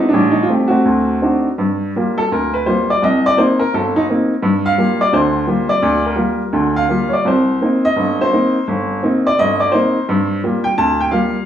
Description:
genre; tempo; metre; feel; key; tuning
solo jazz; 170 BPM; 4/4; swing 64% on 8ths, rubato; G minor; A4 = 442 Hz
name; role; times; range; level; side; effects
clear upright piano; solo; 0.0-11.5 s; G1 to A5; -13 LUFS; equal; none
room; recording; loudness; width
wet large studio reverb, RT60 0.8 s; heard from further back in the room, small room ambience; -13 LUFS; side -10 dB against mid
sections
0.0-1.6 A section; 1.6-11.5 B section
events
upright piano solo 1.6-11.5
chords
0.1 Am7b5; 0.9 D7b9; 1.6 Gm7; 3.0 Cm7; 4.4 Gm7; 7.3 Cm7; 10.1 Gm7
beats
| 0.14 0.49 0.85 1.22 | 1.59 1.96 2.31 2.67 | 3.03 3.38 3.73 4.09 | 4.44 4.78 5.13 5.48 | 5.83 6.18 6.54 6.90 | 7.26 7.62 7.97 8.33 | 8.68 9.03 9.39 9.73 | 10.08 10.43 10.77 11.12

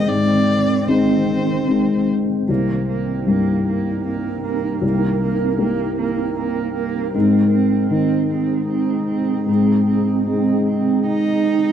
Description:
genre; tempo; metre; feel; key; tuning
neoclassical piano and strings; 76 BPM; 3/4; rubato; C minor; A4 = 440 Hz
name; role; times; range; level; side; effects
rich violin; melody; 0.0-2.1, 11.1-11.7 s; C5 to Eb5; -25 LUFS; left 2 dB; none
warm cello; second line; 0.0-11.7 s; Bb3 to Eb4; -22 LUFS; right 9 dB; slapback echo
felt-muted upright piano; accompaniment; 0.0-11.7 s; C2 to Eb4; -18 LUFS; left 3 dB; none
granular cloud pad; sustained chords; 0.0-11.7 s; Eb3 to C5; -24 LUFS; right 3 dB; built-in reverb
room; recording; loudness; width
small room ambience; dry, close 1970s-style studio recording; -16 LUFS; side -9 dB against mid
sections
0.0-2.5 A section; 2.5-11.7 B section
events
none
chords
0.0 Ab; 2.5 Cm7; 7.1 Ab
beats
| 0.09 0.89 1.69 | 2.48 3.27 4.05 | 4.83 5.60 6.37 | 7.14 7.91 8.69 | 9.48 10.28 11.07

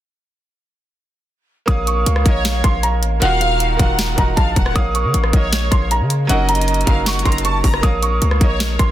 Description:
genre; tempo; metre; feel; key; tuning
hip hop, trap; 156 BPM; 4/4; half-time; Bb minor; A4 = 443 Hz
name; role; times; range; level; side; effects
felt-muted upright piano; melody; 1.7-8.9 s; F5 to Eb6; -22 LUFS; right 2 dB; low-pass filter
bright concert grand piano; accompaniment; 1.7-8.9 s; Eb3 to F5; -25 LUFS; right 3 dB; low-pass filter
mellow hollow flute section; sustained chords; 1.7-8.9 s; Eb4 to Bb5; -27 LUFS; right 4 dB; none
hard-hitting 808-style bass; bass; 1.7-8.9 s; Eb1 to Db3; -18 LUFS; equal; none
trap drum kit; drums; 1.7-8.9 s; hi-hat, kick drum, rim click, snare drum; -18 LUFS; equal; soft clipping on snare
warm studio violin section; second line; 2.3-8.9 s; Db5 to Bb5; -25 LUFS; left 1 dB; tape echo
room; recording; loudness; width
small room ambience; dense, heavily limited modern master; -14 LUFS; side -13 dB against mid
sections
1.7-8.9 A section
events
none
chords
1.7 Bbm; 3.2 Ebmadd9; 4.8 Bbm; 6.3 Gb6; 7.8 Bbm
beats
| 1.68 2.06 2.45 2.83 | 3.22 3.60 3.99 4.37 | 4.76 5.14 5.53 5.91 | 6.29 6.68 7.06 7.45 | 7.83 8.22 8.60

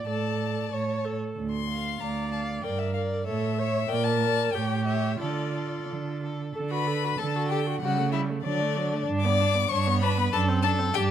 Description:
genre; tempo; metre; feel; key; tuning
quick classical-period movement for string quartet; 95 BPM; 2/4; rubato; D minor, D major from 6.5 s; A4 = 439 Hz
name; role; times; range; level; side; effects
clear violin; second line; 0.0-11.1 s; D4 to F5; -32 LUFS; left 4 dB; none
warm viola; accompaniment; 0.0-11.1 s; F#3 to D5; -32 LUFS; right 1 dB; none
rich cello; bass; 0.0-11.1 s; D2 to D3; -28 LUFS; right 4 dB; none
rich violin; melody; 0.1-11.0 s; D5 to D6; -31 LUFS; left 12 dB; none
room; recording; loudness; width
moderate recital hall reverb, RT60 1.3 s; close, detailed microphones; -24 LUFS; side -10 dB against mid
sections
0.0-6.5 A section; 6.5-11.1 B section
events
none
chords
0.1 D5/A; 0.7 A; 1.4 Dm; 2.6 Gm; 3.3 A; 3.9 Bb; 4.5 A7; 5.2 Dm; 6.5 D; 7.8 A7/C#; 8.4 D; 9.1 G; 10.3 D7/F#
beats
| 0.07 0.72 | 1.36 2.00 | 2.64 3.27 | 3.90 4.54 | 5.20 5.88 | 6.54 7.18 | 7.82 8.45 | 9.07 9.71 | 10.33 10.95

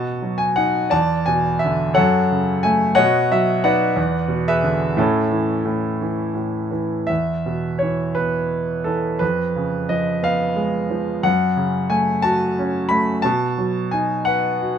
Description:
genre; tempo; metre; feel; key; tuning
classical, lyrical solo piano; 54-61 BPM (dotted quarters); 6/8; rubato; A major, E major from 7.1 s; A4 = 440 Hz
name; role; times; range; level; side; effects
clear concert grand piano; solo; 0.0-14.8 s; E2 to B5; -17 LUFS; equal; none
room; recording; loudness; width
light reverb; minimal, uncompressed stereo recording; -17 LUFS; side -8 dB against mid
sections
0.0-7.1 A section; 7.1-14.8 B section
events
none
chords
0.0 B7; 0.9 E5; 2.0 F#m; 3.0 Badd9; 4.0 E7; 5.0 A; 7.1 E5; 9.2 C#7/E#; 11.3 F#m; 13.3 B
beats
| 0.93 1.97 | 2.99 3.98 | 4.99 6.02 | 7.10 8.18 | 9.22 10.25 | 11.26 12.25 | 13.25 14.27

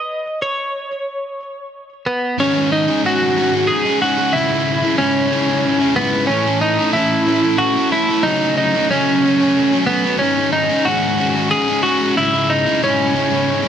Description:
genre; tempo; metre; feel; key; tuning
rock; 92 BPM; 3/4; straight; unclear; A4 = 440 Hz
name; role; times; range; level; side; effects
twelve-string electric guitar; melody; 0.0-13.7 s; B3 to D#5; -17 LUFS; right 1 dB; digital delay
crunchy overdriven guitar; riff; 2.4-13.7 s; C#2 to A4; -18 LUFS; left 1 dB; none
room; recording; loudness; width
moderate lush hall reverb, RT60 1.8 s, digital ambience; none; -14 LUFS; side -8 dB against mid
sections
0.0-2.4 A section; 2.4-13.7 B section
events
none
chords
0.0 N.C.; 2.4 G#sus4; 4.3 C#m; 6.3 A; 8.3 F#m; 10.2 G#sus4; 12.2 C#m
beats
| 0.42 1.07 1.73 | 2.38 3.04 3.69 | 4.34 5.00 5.65 | 6.30 6.95 7.61 | 8.26 8.91 9.56 | 10.22 10.87 11.52 | 12.17 12.83 13.48

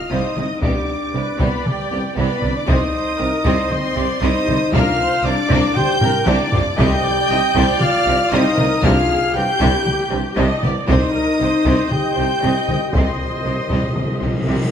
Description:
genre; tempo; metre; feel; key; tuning
cinematic, epic orchestral film score; 117 BPM; 4/4; straight; C minor; A4 = 440 Hz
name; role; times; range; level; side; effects
rich symphonic violin section; melody; 0.0-14.4 s; G5 to G6; -27 LUFS; left 3 dB; none
rich symphonic viola section; accompaniment; 0.0-14.7 s; G4 to Eb5; -25 LUFS; right 2 dB; none
mellow French horn section; sustained chords; 0.0-14.5 s; G3 to G4; -24 LUFS; left 4 dB; none
warm trumpet section; stabs; 0.0-14.5 s; G4 to G5; -23 LUFS; right 1 dB; none
sub drop and cymbal swell; sound effects; 0.0-0.6, 14.2-14.7 s; none; -40 LUFS; left 1 dB; none
rich symphonic violin section; second line; 0.1-14.7 s; G3 to B4; -27 LUFS; left 3 dB; none
mellow tuba; bass; 0.1-14.6 s; C2; -25 LUFS; right 3 dB; none
rich symphonic cello section; bass; 0.1-14.6 s; C3; -25 LUFS; right 2 dB; none
rich symphonic double bass section; bass; 0.1-14.5 s; C2; -26 LUFS; right 2 dB; none
taiko ensemble; drums; 0.4-14.2 s; none; -22 LUFS; left 1 dB; none
timpani; percussion; 4.7-9.6, 12.9-14.7 s; C3; -26 LUFS; equal; none
room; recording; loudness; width
wet recital hall reverb, RT60 1.6 s; none; -15 LUFS; side -8 dB against mid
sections
0.0-14.7 A section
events
impact 0.0-0.6; drum fill 6.0-6.8; timpani fill 12.9-14.7; cymbal swell 14.2-14.7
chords
0.0 Cm; 0.6 G/C; 2.7 Cm; 4.7 Bb/C; 6.8 Cm; 8.8 G5/C; 10.9 Cm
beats
0.12 | 0.63 1.14 1.66 2.17 | 2.68 3.19 3.71 4.22 | 4.73 5.25 5.76 6.27 | 6.78 7.30 7.81 8.32 | 8.84 9.35 9.86 10.37 | 10.89 11.40 11.91 12.43 | 12.94 13.45 13.96 14.48

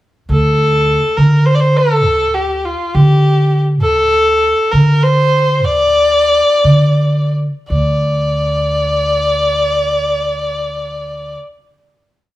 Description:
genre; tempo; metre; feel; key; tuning
persian; 54-68 BPM (dotted quarters); 6/8; straight; D dastgah shur; A4 = 439 Hz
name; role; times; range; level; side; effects
warm kamancheh; melody; 0.3-11.3 s; F4 to D5; -13 LUFS; left 1 dB; none
upright bass; bass; 0.3-11.3 s; D2 to D3; -14 LUFS; right 1 dB; none
room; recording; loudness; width
light reverb; band playing live in one room; -11 LUFS; side -15 dB against mid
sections
0.3-7.7 A section; 7.7-12.1 final note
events
slowing down 3.8-7.7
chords
none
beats
| 0.29 1.18 | 2.06 2.95 | 3.83 4.73 | 5.66 6.64 | 7.70 8.80 | 9.91 11.02

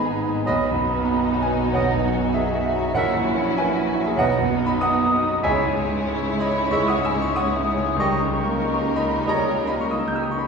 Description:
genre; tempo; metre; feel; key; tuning
classical, romantic movement for piano and orchestra; 94 BPM; 4/4; rubato; unclear; A4 = 440 Hz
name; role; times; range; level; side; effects
bright grand piano; melody; 0.0-10.5 s; A#1 to G6; -23 LUFS; equal; none
warm symphonic violin section; melody; 0.0-10.5 s; F#4 to C#5; -33 LUFS; left 2 dB; none
dark symphonic violin section; second line; 0.0-10.5 s; D#4 to E4; -30 LUFS; left 1 dB; none
mellow flute section; second line; 0.0-10.5 s; E5 to G6; -28 LUFS; left 1 dB; none
rich studio viola section; accompaniment; 0.0-10.5 s; G3 to C#4; -30 LUFS; right 4 dB; none
mellow French horn section; sustained chords; 0.0-9.5 s; F#3 to E4; -30 LUFS; left 1 dB; none
rich chamber double bass section; bass; 0.0-10.5 s; G#1 to C#2; -30 LUFS; right 3 dB; none
warm symphonic cello section; bass; 0.0-10.5 s; G#2 to C#3; -30 LUFS; right 2 dB; none
clear oboe; second line; 0.5-9.5 s; D#5 to E5; -31 LUFS; right 3 dB; none
mellow bassoon; accompaniment; 0.5-9.5 s; F#3 to G#3; -30 LUFS; right 4 dB; none
room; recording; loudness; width
wet scoring stage reverb, RT60 1.8 s; heard from further back in the room, small room ambience; -19 LUFS; side -5 dB against mid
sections
0.0-10.5 A section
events
none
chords
0.5 B; 3.0 F#7/A#; 4.2 B; 5.4 C#m; 8.0 D#7/C#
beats
| 0.47 1.11 1.74 2.34 | 2.96 3.57 4.20 4.81 | 5.43 6.07 6.70 7.35 | 7.99 8.62 9.27 9.92

